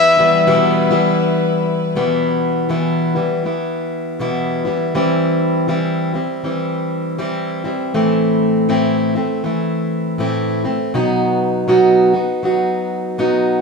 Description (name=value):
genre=folk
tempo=80 BPM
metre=4/4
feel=swing 61% on 8ths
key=E minor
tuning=A4 = 440 Hz
part: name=clear trumpet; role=melody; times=0.0-1.2 s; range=E5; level=-13 LUFS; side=left 2 dB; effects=none
part: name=picked plugged-in steel-string acoustic guitar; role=accompaniment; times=0.0-13.6 s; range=E2 to F#4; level=-15 LUFS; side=equal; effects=none
part: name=warm chamber string section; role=sustained chords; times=0.0-1.9 s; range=G3 to B4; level=-21 LUFS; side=left 1 dB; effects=none
room=wet small room reverb, RT60 0.5 s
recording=band playing live in one room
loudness=-15 LUFS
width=side -4 dB against mid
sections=0.0-2.0 A section; 2.0-13.6 B section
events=none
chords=0.0 Em; 4.9 C/E; 7.9 Am; 10.9 B